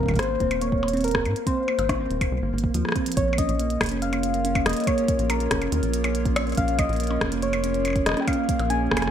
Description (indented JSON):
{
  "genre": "IDM",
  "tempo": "141 BPM",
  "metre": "4/4",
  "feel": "straight",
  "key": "Bb minor",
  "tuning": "A4 = 438 Hz",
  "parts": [
    { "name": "soft struck synth lead", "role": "melody", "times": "0.0-9.1 s", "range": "Bb4 to Ab5", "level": "-27 LUFS", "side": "left 2 dB", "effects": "chorus, ping-pong delay, shimmer reverb" },
    { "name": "rubbery square bass", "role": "bass", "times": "0.0-9.1 s", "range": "Eb1 to Ab2", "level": "-28 LUFS", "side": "equal", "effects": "tube saturation" },
    { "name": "electronic kick drum", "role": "drums", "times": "0.0-9.0 s", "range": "none", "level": "-27 LUFS", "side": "equal", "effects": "small room ambience" },
    { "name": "flickering grainy texture", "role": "texture", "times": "0.0-3.2 s", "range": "F5", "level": "-47 LUFS", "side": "right 3 dB", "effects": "none" },
    { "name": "harp-like synth pluck", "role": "arpeggios", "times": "0.1-9.0 s", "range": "F3 to Db4", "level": "-27 LUFS", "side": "right 2 dB", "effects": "chorus, digital delay" },
    { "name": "glitchy drum kit", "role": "drums", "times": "0.1-9.1 s", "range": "hi-hat, percussion blips, rim click", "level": "-28 LUFS", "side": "left 1 dB", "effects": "small room ambience" },
    { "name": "warbly tape-like pad", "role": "sustained chords", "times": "3.6-9.1 s", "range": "Bb3 to Db5", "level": "-32 LUFS", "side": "right 2 dB", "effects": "chorus, built-in reverb, vintage 12-bit sampler grit, shimmer reverb" }
  ],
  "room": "moderate plate reverb, RT60 1.3 s, digital ambience",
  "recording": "bright 1980s-style digital production",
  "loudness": "-21 LUFS",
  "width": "side -9 dB against mid",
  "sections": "0.0-3.2 A section; 3.2-9.1 B section",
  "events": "drum fill 3.0",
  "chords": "0.0 Ab; 3.2 Bbm7"
}